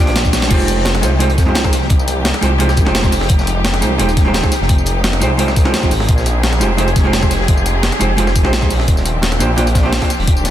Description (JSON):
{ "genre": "liquid drum and bass", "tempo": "172 BPM", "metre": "4/4", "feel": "straight", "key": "F dorian", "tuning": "A4 = 444 Hz", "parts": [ { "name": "hollow-body jazz guitar", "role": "accompaniment", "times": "0.0-10.1 s", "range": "Ab3 to D5", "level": "-19 LUFS", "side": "right 2 dB", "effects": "tape echo" }, { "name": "dark symphonic string section", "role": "sustained chords", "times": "0.0-10.5 s", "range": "F3 to Ab4", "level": "-23 LUFS", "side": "left 1 dB", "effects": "sidechain pumping" }, { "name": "swelling detuned saw bass", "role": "bass", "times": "0.1-10.5 s", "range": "Eb1 to F2", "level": "-17 LUFS", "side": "equal", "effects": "none" }, { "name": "crunchy breakbeat drum kit", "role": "drums", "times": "0.1-10.5 s", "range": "hi-hat, snare drum", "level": "-28 LUFS", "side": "equal", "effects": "none" }, { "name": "breakbeat sampler-style drum kit", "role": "drums", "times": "0.2-10.5 s", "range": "crash cymbal, hi-hat, snare drum, tambourine", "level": "-20 LUFS", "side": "equal", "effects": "none" }, { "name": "electronic kick drum", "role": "drums", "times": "0.2-10.3 s", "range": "none", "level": "-14 LUFS", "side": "equal", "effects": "none" } ], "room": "light reverb", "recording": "dense, heavily limited modern master", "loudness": "-12 LUFS", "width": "side -12 dB against mid", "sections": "0.5-10.5 A section", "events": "drum fill 0.3; drop 0.5-10.5", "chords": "0.0 Ebmaj13 (rootless); 0.5 Fm9; 6.1 Bb13sus4; 8.9 Ebmaj13" }